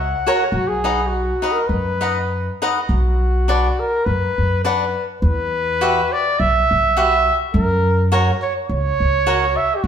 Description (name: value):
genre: mexican folk, mariachi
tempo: 104 BPM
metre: 4/4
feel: swing 54% on 8ths, rubato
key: B harmonic minor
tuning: A4 = 439 Hz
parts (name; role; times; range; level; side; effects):
- warm trumpet; melody; 0.0-9.9 s; F#4 to F#5; -19 LUFS; right 1 dB; none
- upright bass; bass; 0.0-9.9 s; B1 to F#2; -20 LUFS; equal; none
- cavaquinho; accompaniment; 0.3-9.5 s; D4 to F#5; -21 LUFS; left 1 dB; none
room: wet stone room reverb, RT60 1.3 s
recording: band playing live in one room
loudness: -16 LUFS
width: side -8 dB against mid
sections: 0.0-2.9 A section; 2.9-9.9 B section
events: none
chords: 0.0 F#; 0.5 B; 2.9 Bm; 5.2 Emadd9; 7.5 F#